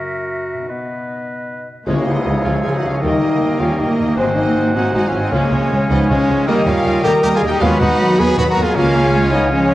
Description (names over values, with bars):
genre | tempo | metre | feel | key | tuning
cinematic, heroic adventure film score | 156 BPM | 3/4 | straight | unclear | A4 = 439 Hz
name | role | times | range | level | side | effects
bright clarinet | second line | 0.0-9.7 s | B3 to C#5 | -26 LUFS | equal | none
clear oboe | second line | 0.0-9.7 s | A#4 to F#5 | -27 LUFS | right 1 dB | none
hollow concert flute | second line | 0.0-9.7 s | D#5 to B5 | -26 LUFS | left 1 dB | none
concert harp | arpeggios | 0.0-9.7 s | F#2 to D#6 | -26 LUFS | left 3 dB | none
warm studio violin section | melody | 1.9-9.7 s | B#4 to B5 | -27 LUFS | left 1 dB | none
dark symphonic violin section | second line | 1.9-9.7 s | B#4 to B5 | -29 LUFS | left 1 dB | none
clear symphonic viola section | accompaniment | 1.9-9.7 s | E#3 to C#4 | -24 LUFS | equal | none
mellow French horn section | sustained chords | 1.9-9.7 s | B#3 to B4 | -19 LUFS | left 1 dB | none
warm trombone section | sustained chords | 1.9-9.7 s | C#3 to B#3 | -28 LUFS | right 2 dB | none
clear trumpet | stabs | 1.9-9.7 s | G#3 to G#4 | -24 LUFS | right 1 dB | none
dark symphonic double bass section | bass | 1.9-9.7 s | G#1 to D#2 | -22 LUFS | right 1 dB | none
warm symphonic cello section | bass | 1.9-9.7 s | E#3 to A#3 | -22 LUFS | right 1 dB | none
tam-tam | percussion | 1.9-3.4 s | none | -26 LUFS | left 1 dB | none
room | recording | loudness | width
wet scoring stage reverb, RT60 1.9 s | worn, warbling old tape, cassette tape, warbly pitch drift | -13 LUFS | side -15 dB against mid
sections
0.0-1.9 A section; 1.9-9.7 B section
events
band accent 1.9-2.3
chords
0.0 F#7; 0.7 B; 1.9 C#add9; 3.0 D#; 4.2 G#7; 5.3 C#; 6.5 D#; 7.6 B/D#; 8.8 C#